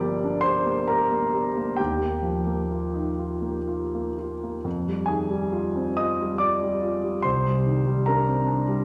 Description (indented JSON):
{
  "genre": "classical, impressionist solo piano",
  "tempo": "60-74 BPM",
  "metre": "3/4",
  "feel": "rubato",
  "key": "F dorian",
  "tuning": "A4 = 440 Hz",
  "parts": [
    { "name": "warm concert grand piano", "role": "solo", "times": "0.0-8.8 s", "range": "G1 to Eb6", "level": "-25 LUFS", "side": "equal", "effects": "none" }
  ],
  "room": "wet recital hall reverb, RT60 1.6 s",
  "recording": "none",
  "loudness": "-25 LUFS",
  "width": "mono",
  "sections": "0.0-8.8 A section",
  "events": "none",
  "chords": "0.0 Gm7; 1.8 Ebadd9; 4.7 Fm9; 7.2 Cm9",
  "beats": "0.01 0.91 | 1.79 2.72 3.69 | 4.65 5.55 6.41 | 7.25 8.07"
}